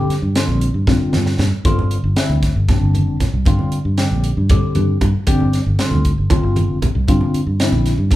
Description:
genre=electric jazz fusion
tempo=232 BPM (eighths)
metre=7/8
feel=straight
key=G dorian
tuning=A4 = 440 Hz
part: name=tine electric piano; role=accompaniment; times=0.0-8.2 s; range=D3 to G4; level=-20 LUFS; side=left 1 dB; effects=medium tremolo, phaser
part: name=fingered electric bass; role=bass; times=0.1-8.2 s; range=F1 to G2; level=-18 LUFS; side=equal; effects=none
part: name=crisp fusion drum kit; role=drums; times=0.1-8.2 s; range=hi-hat, kick drum, snare drum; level=-20 LUFS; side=equal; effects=none
part: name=congas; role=percussion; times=0.5-8.2 s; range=none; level=-23 LUFS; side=right 1 dB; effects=none
room=moderate large studio reverb, RT60 0.8 s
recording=band playing live in one room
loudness=-14 LUFS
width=side -15 dB against mid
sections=0.0-8.2 A section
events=drum fill 0.9-1.6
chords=0.0 G7(no3)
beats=0.10 0.35 0.61 0.87 1.13 1.39 | 1.65 1.91 2.17 2.42 2.68 2.94 3.20 | 3.46 3.72 3.98 4.24 4.49 4.75 5.01 | 5.27 5.53 5.79 6.04 6.30 6.56 6.82 | 7.08 7.34 7.60 7.85 8.11

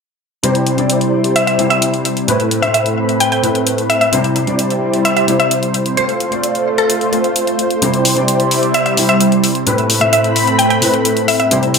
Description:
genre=EDM, festival progressive house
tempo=130 BPM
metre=4/4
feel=straight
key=C major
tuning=A4 = 440 Hz
part: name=dark baby grand piano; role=accompaniment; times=0.4-11.8 s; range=A2 to D5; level=-17 LUFS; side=left 1 dB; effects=ensemble chorus, ping-pong delay
part: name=lush unison pad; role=sustained chords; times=0.9-11.8 s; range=G3 to B5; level=-17 LUFS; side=right 2 dB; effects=chorus, phaser
part: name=electronic hi-hat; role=drums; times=0.4-11.8 s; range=none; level=-19 LUFS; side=left 2 dB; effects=none
part: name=mallet-like synth pluck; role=melody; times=1.4-11.5 s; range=A4 to G5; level=-16 LUFS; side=left 1 dB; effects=chorus, ping-pong delay
room=wet plate reverb, RT60 1.2 s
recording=dreamy mix soaked in reverb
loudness=-12 LUFS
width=side -5 dB against mid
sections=0.4-11.8 A section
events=filter sweep on analog synth pad 0.4-11.8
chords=0.4 C; 2.3 Amadd9; 4.1 C; 6.0 F; 7.8 C; 9.7 Amadd9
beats=| 0.43 0.90 1.36 1.82 | 2.28 2.74 3.21 3.67 | 4.13 4.59 5.05 5.51 | 5.97 6.43 6.90 7.36 | 7.82 8.28 8.74 9.21 | 9.67 10.13 10.59 11.05 | 11.51

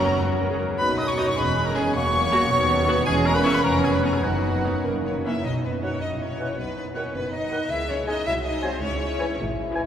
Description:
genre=quick classical-period movement for symphony orchestra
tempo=98-110 BPM (dotted quarters)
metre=6/8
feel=rubato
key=B major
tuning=A4 = 444 Hz
part: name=clear chamber violin section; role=melody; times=0.0-9.9 s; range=F#5 to D#6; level=-31 LUFS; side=left 2 dB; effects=none
part: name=clear chamber violin section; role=second line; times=0.0-9.4 s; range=F#4 to E5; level=-33 LUFS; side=left 2 dB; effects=none
part: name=clear clarinet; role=second line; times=0.0-9.4 s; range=A#3 to E5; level=-31 LUFS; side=right 1 dB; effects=none
part: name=mellow hollow silver concert flute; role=second line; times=0.0-9.4 s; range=A#4 to D#6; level=-30 LUFS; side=equal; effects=none
part: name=warm oboe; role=second line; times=0.0-9.8 s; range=F#4 to G#5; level=-31 LUFS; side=right 1 dB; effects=none
part: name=dark bassoon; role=accompaniment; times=0.0-9.8 s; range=D#3 to B3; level=-31 LUFS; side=right 1 dB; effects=none
part: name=rich chamber viola section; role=accompaniment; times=0.0-9.9 s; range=A#3 to G#4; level=-32 LUFS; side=right 1 dB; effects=none
part: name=clear French horn section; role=sustained chords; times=0.0-9.9 s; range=F#3 to G#4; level=-29 LUFS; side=left 1 dB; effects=none
part: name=bright studio double bass section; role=bass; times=0.0-9.8 s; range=E1 to D#2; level=-30 LUFS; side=right 1 dB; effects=none
part: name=warm chamber cello section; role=bass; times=0.0-9.4 s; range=D#2 to E4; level=-30 LUFS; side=right 1 dB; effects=none
part: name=timpani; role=percussion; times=4.2-6.0 s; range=F#2 to B2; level=-37 LUFS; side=left 1 dB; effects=none
room=wet cathedral reverb, RT60 6.2 s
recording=recorded in a church or concert hall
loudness=-21 LUFS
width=side -9 dB against mid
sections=0.0-5.5 A section; 5.5-9.9 B section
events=none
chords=0.0 F#; 0.8 B; 1.4 C#m/E; 2.0 F#7/E; 2.5 B/D#; 3.1 C#m/E; 3.6 C#7/E#; 4.2 B/F#; 4.8 F#; 5.5 B; 6.0 F#7/A#; 6.6 B; 7.7 C#m; 8.3 G#7/B#; 8.8 C#m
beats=0.21 | 0.79 1.36 | 1.96 2.51 | 3.06 3.64 | 4.24 4.85 | 5.45 6.02 | 6.59 7.15 | 7.71 8.27 | 8.82 9.38

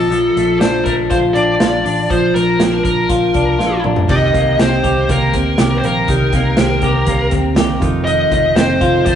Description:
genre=jangly indie pop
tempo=120 BPM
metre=4/4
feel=straight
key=C dorian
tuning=A4 = 441 Hz
part: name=high-gain lead guitar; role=melody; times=0.0-9.2 s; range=A4 to Eb5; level=-18 LUFS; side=equal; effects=distortion, ping-pong delay
part: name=semi-hollow electric guitar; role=arpeggios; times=0.0-9.2 s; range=Eb3 to G4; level=-17 LUFS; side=left 1 dB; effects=none
part: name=vintage muted picked electric bass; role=bass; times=0.0-9.2 s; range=F1 to D2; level=-20 LUFS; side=equal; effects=none
part: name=modern studio drum kit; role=drums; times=0.1-9.2 s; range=crash cymbal, hi-hat, kick drum, snare drum, toms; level=-19 LUFS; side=right 1 dB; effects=none
part: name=picked steel-string acoustic guitar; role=accompaniment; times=4.1-9.2 s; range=F2 to G4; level=-21 LUFS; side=right 4 dB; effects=none
room=wet stone room reverb, RT60 1.4 s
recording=rough rehearsal-room recording, nothing above 10.6 kHz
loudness=-12 LUFS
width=side -9 dB against mid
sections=0.0-4.1 A section; 4.1-9.2 B section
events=drum fill 3.6-4.1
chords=0.0 Bbmaj7; 4.1 Cm7; 7.8 F7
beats=| 0.11 0.61 1.11 1.61 | 2.10 2.60 3.10 3.60 | 4.10 4.59 5.09 5.59 | 6.09 6.58 7.08 7.58 | 8.08 8.57 9.07

